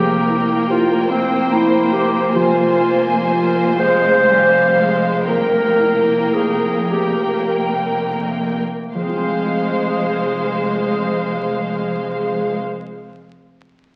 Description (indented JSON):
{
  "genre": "classical, slow romantic movement for symphony orchestra",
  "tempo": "27-49 BPM (dotted quarters)",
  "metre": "6/8",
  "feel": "rubato",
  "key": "F minor",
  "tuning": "A4 = 438 Hz",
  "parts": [
    { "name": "rich studio violin section", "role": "melody", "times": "0.0-12.6 s", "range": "F5 to Ab5", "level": "-28 LUFS", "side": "equal", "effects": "none" },
    { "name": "mellow clarinet", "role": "second line", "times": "0.0-12.6 s", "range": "C4 to C5", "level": "-20 LUFS", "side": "equal", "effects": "none" },
    { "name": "rich studio violin section", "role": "second line", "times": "0.0-12.6 s", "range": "Bb4 to C5", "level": "-26 LUFS", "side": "equal", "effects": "none" },
    { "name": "rich studio viola section", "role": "accompaniment", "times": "0.0-12.6 s", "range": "G3 to Bb3", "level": "-25 LUFS", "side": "equal", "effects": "none" },
    { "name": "concert harp", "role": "arpeggios", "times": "0.0-12.9 s", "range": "F3 to Bb5", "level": "-29 LUFS", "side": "equal", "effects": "none" },
    { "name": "rich studio cello section", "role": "bass", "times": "0.0-12.6 s", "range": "F2", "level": "-30 LUFS", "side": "equal", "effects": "none" },
    { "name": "rich studio double bass section", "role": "bass", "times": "0.0-12.6 s", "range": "F1", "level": "-30 LUFS", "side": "equal", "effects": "none" }
  ],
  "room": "wet scoring stage reverb, RT60 1.5 s",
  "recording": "very old 78 rpm record, vinyl crackle",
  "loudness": "-17 LUFS",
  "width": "mono",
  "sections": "0.0-8.9 A section; 8.9-12.9 B section",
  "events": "slowing down 1.1-8.9",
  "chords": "0.0 C7/F; 2.3 Fm; 5.3 C7/F; 8.9 Fm",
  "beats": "1.11 | 2.35 3.80 | 5.28 6.93 | 8.95 10.93"
}